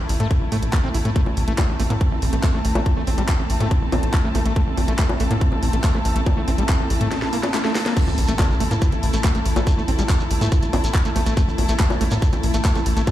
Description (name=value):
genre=psychedelic trance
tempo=141 BPM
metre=4/4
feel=straight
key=A minor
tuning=A4 = 444 Hz
part: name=evolving wavetable pad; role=sustained chords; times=0.0-13.1 s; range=A3 to E4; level=-29 LUFS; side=right 1 dB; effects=ensemble chorus, built-in reverb, sidechain pumping
part: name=tight sequencer bass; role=bass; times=0.0-13.0 s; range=A1 to A2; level=-21 LUFS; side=equal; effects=none
part: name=dark studio string section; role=texture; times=0.0-13.1 s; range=E4 to A5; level=-30 LUFS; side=left 2 dB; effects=sidechain pumping
part: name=garage drum kit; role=drums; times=0.1-13.1 s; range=bongos, crash cymbal, handclaps, hi-hat, snare drum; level=-27 LUFS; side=left 1 dB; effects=overdrive, small room ambience
part: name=overdriven acid bass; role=riff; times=0.2-13.0 s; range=G3 to E4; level=-28 LUFS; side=equal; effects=distortion, auto-pan, sidechain pumping, tape echo
part: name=electronic kick drum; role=drums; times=0.3-13.1 s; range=none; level=-18 LUFS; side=equal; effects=overdrive, small room ambience
part: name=shekere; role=percussion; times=8.0-13.1 s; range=none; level=-34 LUFS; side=right 3 dB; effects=none
part: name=impact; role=sound effects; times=8.0-9.7 s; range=none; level=-28 LUFS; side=equal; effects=none
room=little or no reverb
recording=played on a big sound system in a bare room, large studio reverb, lossy compression artefacts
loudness=-18 LUFS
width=side -13 dB against mid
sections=0.0-8.0 A section; 8.0-13.1 B section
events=fade-in on string section 0.0-8.0; drum fill 7.1-8.0; drop 8.0-13.1; impact 8.0-9.7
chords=0.0 A5